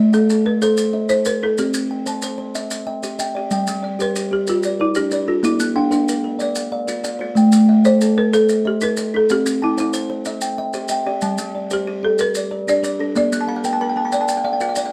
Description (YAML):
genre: southern african traditional, mbira-style interlocking cycle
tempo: 124 BPM (dotted quarters)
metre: 12/8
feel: straight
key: G equiheptatonic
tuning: A4 = 441 Hz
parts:
  - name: buzzing kalimba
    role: arpeggios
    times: 0.0-14.9 s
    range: G3 to Bb5+43c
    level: -26 LUFS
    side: equal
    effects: none
  - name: kalimba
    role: arpeggios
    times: 0.0-14.9 s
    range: G3 to G5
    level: -22 LUFS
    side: equal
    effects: none
  - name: folk marimba with medium hard mallets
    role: melody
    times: 0.1-14.4 s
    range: D4 to D5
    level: -22 LUFS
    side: equal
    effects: none
  - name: maracas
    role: percussion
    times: 0.1-14.9 s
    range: none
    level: -32 LUFS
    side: equal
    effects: none
room: wet studio reverb, RT60 0.6 s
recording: none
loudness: -19 LUFS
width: mono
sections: 0.0-3.5 A section; 3.5-14.9 B section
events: kalimba fill 13.2-14.9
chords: 0.0 Am; 1.6 C; 3.5 Gm; 5.4 Bb; 7.4 Am; 9.3 C; 11.2 Gm; 13.2 Bb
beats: 0.14 0.62 1.10 | 1.58 2.07 2.55 3.03 | 3.51 4.00 4.48 4.96 | 5.44 5.92 6.41 6.89 | 7.37 7.85 8.33 8.81 | 9.30 9.78 10.26 10.74 | 11.23 11.71 12.19 12.68 | 13.16 13.64 14.12 14.61